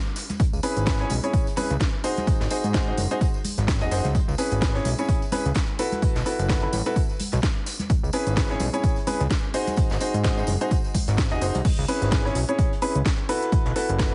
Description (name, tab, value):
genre	piano house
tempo	128 BPM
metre	4/4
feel	swing 57% on 16ths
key	C# minor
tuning	A4 = 440 Hz
part	garage drum kit	drums	0.2-14.1 s	crash cymbal, hi-hat, snare drum	-34 LUFS	equal	none
part	vintage brush drum kit	drums	0.2-14.1 s	hi-hat, snare drum	-44 LUFS	equal	none
part	tambourine and congas	percussion	0.2-11.6 s	none	-37 LUFS	equal	none
part	electronic kick drum	drums	0.4-14.1 s	none	-26 LUFS	equal	none
part	fat analog bass	bass	0.5-14.1 s	D#1 to G#2	-27 LUFS	equal	sidechain pumping
part	clear grand piano	riff	0.6-14.1 s	C#4 to D#5	-29 LUFS	equal	sidechain pumping, dub echo
room	small room ambience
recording	heavily compressed radio sound, multiband compression, nothing above 10.7 kHz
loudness	-24 LUFS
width	mono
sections	0.0-11.6 A section; 11.6-14.1 B section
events	drop 11.6-14.1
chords	0.4 C#m7; 2.0 G#7; 4.1 C#m7; 5.8 B7sus4; 7.9 C#m7; 9.5 G#7; 11.6 C#m7; 13.3 B7sus4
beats	| 0.40 0.87 1.34 1.80 | 2.27 2.74 3.21 3.68 | 4.15 4.62 5.09 5.55 | 6.02 6.49 6.96 7.43 | 7.90 8.37 8.84 9.30 | 9.77 10.24 10.71 11.18 | 11.65 12.12 12.59 13.05 | 13.52 13.99